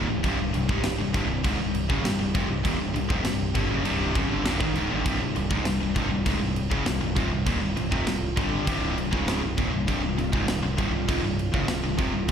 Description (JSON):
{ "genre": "heavy metal", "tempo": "100 BPM", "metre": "4/4", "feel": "straight", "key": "C phrygian", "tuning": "A4 = 440 Hz", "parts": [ { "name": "airy breathy pad", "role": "sustained chords", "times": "0.0-12.3 s", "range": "Eb3 to G4", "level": "-35 LUFS", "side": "right 1 dB", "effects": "chorus, phaser" }, { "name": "heavy high-gain guitar", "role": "riff", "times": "0.0-12.3 s", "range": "C2 to G3", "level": "-30 LUFS", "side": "left 11 dB", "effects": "distortion, slapback echo" }, { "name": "high-gain distorted guitar", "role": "riff", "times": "0.0-12.3 s", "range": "C2 to G3", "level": "-31 LUFS", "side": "right 10 dB", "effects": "distortion, slapback echo" }, { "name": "overdriven electric guitar", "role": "riff", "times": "0.0-12.3 s", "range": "C2 to G3", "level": "-31 LUFS", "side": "right 1 dB", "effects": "none" }, { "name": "growling picked electric bass", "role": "bass", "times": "0.0-12.3 s", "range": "C1 to Ab1", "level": "-30 LUFS", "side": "equal", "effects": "overdrive" }, { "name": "tight metal drum kit", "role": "drums", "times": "0.2-12.3 s", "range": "crash cymbal, kick drum, snare drum", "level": "-29 LUFS", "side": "equal", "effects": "none" } ], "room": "light reverb", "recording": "live gig heard through the venue's PA, recital hall reverb", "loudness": "-23 LUFS", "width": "side -8 dB against mid", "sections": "0.0-12.3 A section", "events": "none", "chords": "0.0 Cm", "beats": "| 0.24 0.84 1.44 2.04 | 2.65 3.25 3.85 4.45 | 5.06 5.66 6.26 6.86 | 7.46 8.07 8.67 9.27 | 9.88 10.48 11.08 11.69 | 12.29" }